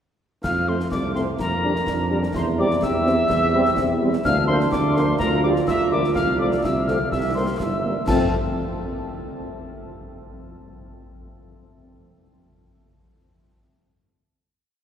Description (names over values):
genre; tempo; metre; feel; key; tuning
military-style march for wind band; 126 BPM; 2/4; straight; F major; A4 = 440 Hz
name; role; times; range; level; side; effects
mellow trumpet section; melody; 0.4-8.3 s; Bb4 to A5; -27 LUFS; right 1 dB; none
warm euphonium; second line; 0.4-7.8 s; A3 to G4; -27 LUFS; right 3 dB; none
wooden piccolo; second line; 0.4-8.3 s; A5 to F6; -27 LUFS; left 3 dB; none
mellow tuba; bass; 0.4-8.3 s; G1 to F2; -25 LUFS; right 1 dB; none
concert snare drum, clash cymbals and concert bass drum; drums; 0.4-8.3 s; none; -31 LUFS; left 1 dB; none
mellow French horn section; accompaniment; 0.7-8.3 s; F3 to Bb4; -30 LUFS; left 4 dB; none
dark trombone section; sustained chords; 0.7-8.3 s; F3 to D4; -29 LUFS; right 2 dB; none
room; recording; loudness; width
wet cathedral reverb, RT60 6.3 s; recorded in a church or concert hall; -19 LUFS; side -8 dB against mid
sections
0.4-8.1 A section; 8.1-9.0 final chord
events
none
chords
0.4 F; 1.4 Gm7/F; 2.3 C/E; 4.3 Bb/D; 5.2 Gm7/D; 6.2 F/C; 7.1 C7; 8.1 F